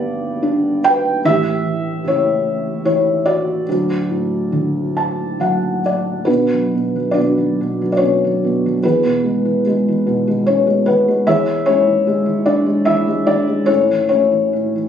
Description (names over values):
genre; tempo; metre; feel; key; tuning
classical, lyrical solo piano; 67-75 BPM; 3/4; rubato; D major, B dorian from 6.3 s; A4 = 438 Hz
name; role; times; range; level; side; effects
felt-muted upright piano; solo; 0.0-14.9 s; D1 to A5; -14 LUFS; equal; none
room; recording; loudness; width
light reverb; recorded on a phone in the room, studio reverb, compression; -14 LUFS; side -8 dB against mid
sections
0.0-6.3 A section; 6.3-14.9 B section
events
felt piano fill 4.5-6.3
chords
0.0 G; 1.2 A7; 3.7 D; 6.3 Bm; 8.8 E; 11.3 C#m/E; 13.7 A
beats
0.43 | 1.24 2.04 2.84 | 3.67 4.52 5.40 | 6.28 7.15 8.00 | 8.84 9.65 10.46 | 11.26 12.06 12.87 | 13.69 14.54